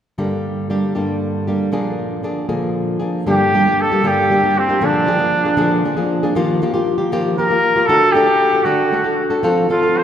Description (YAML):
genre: mexican folk, mariachi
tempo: 78 BPM (dotted quarters)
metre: 6/8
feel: straight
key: G minor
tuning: A4 = 441 Hz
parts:
  - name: flamenco guitar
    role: accompaniment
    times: 0.2-10.0 s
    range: G2 to A4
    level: -17 LUFS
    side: equal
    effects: none
  - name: clear trumpet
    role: melody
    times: 3.3-10.0 s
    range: C4 to C5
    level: -16 LUFS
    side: equal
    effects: none
room: wet church reverb, RT60 3.2 s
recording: recorded in a church or concert hall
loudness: -14 LUFS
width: side -9 dB against mid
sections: 0.2-3.3 A section; 3.3-10.0 B section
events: none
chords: 0.2 Gm; 1.7 Bb7; 3.3 Gm; 4.8 Bb7; 6.4 Ebadd9; 7.9 D; 9.4 F